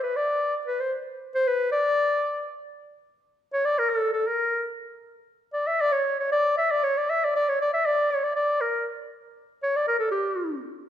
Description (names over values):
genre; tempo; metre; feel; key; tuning
klezmer; 117 BPM; 2/4; straight; unclear; A4 = 440 Hz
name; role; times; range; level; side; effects
warm clarinet; solo; 0.0-10.6 s; G4 to E5; -23 LUFS; left 1 dB; none
room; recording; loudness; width
moderate recital hall reverb, RT60 1.6 s; minimal, uncompressed stereo recording; -23 LUFS; side -10 dB against mid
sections
0.0-2.7 A section; 2.7-10.9 B section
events
none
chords
none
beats
0.16 | 0.67 1.19 | 1.70 2.21 | 2.73 3.24 | 3.75 4.27 | 4.78 5.29 | 5.80 6.32 | 6.83 7.34 | 7.84 8.35 | 8.86 9.37 | 9.88 10.39